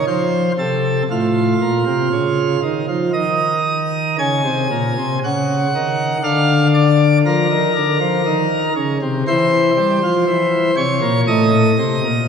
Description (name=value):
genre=classical, chorale-style piece for pipe organ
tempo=59 BPM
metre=3/4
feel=straight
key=unclear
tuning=A4 = 442 Hz
part: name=pipe organ, plenum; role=solo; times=0.0-12.3 s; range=A2 to Ab5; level=-14 LUFS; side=equal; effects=none
room=wet church reverb, RT60 2.8 s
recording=recorded in a church or concert hall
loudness=-14 LUFS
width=side -6 dB against mid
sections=0.0-12.3 A section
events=none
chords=0.1 F; 2.1 Dbadd9; 3.2 Ebm; 6.2 Bb/D; 8.3 Eb5; 9.3 Edim; 11.3 Adim